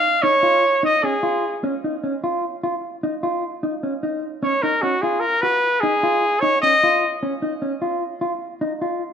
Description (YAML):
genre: progressive instrumental, progressive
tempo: 150 BPM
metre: 7/4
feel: straight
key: unclear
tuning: A4 = 437 Hz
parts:
  - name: clear trumpet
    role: melody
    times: 0.0-7.2 s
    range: F#4 to E#5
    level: -17 LUFS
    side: equal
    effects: none
  - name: mellow electric guitar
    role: arpeggios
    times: 0.2-9.0 s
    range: C#4 to F#4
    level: -24 LUFS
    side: equal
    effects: spring reverb
room: moderate plate reverb, RT60 2.5 s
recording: rough home demo mix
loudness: -18 LUFS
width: side -8 dB against mid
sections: 0.0-9.1 A section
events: trumpet solo 0.0-9.1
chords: 0.0 C#add9; 2.8 D#7(no3); 5.6 C#add9